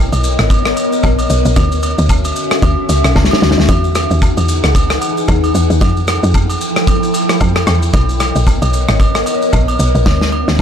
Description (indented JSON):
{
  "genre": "amapiano",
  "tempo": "113 BPM",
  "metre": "4/4",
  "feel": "swing 58% on 16ths",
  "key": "unclear",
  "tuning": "A4 = 444 Hz",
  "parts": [
    { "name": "glassy FM pad", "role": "sustained chords", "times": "0.0-10.6 s", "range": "D3 to G5", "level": "-17 LUFS", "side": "left 1 dB", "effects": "ensemble chorus, built-in reverb" },
    { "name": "woody log drum bass", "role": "bass", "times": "0.0-10.6 s", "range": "G#1 to F2", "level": "-14 LUFS", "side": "equal", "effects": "none" },
    { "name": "loose indie drum kit", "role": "drums", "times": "0.1-10.6 s", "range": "kick drum, rim click, shaker, snare drum", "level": "-15 LUFS", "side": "equal", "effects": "none" },
    { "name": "agogo bells and woodblock", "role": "percussion", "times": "0.1-10.6 s", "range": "none", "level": "-23 LUFS", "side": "right 4 dB", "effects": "none" }
  ],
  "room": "studio ambience",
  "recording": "none",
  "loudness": "-11 LUFS",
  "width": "side -8 dB against mid",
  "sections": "0.0-10.6 A section",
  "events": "drum fill 3.2-3.7, 10.1-10.6",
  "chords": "0.0 Bmaj9; 1.6 Dmaj9; 3.7 Emaj9; 5.8 Fmaj9; 7.9 Bmaj9; 10.1 Dmaj9"
}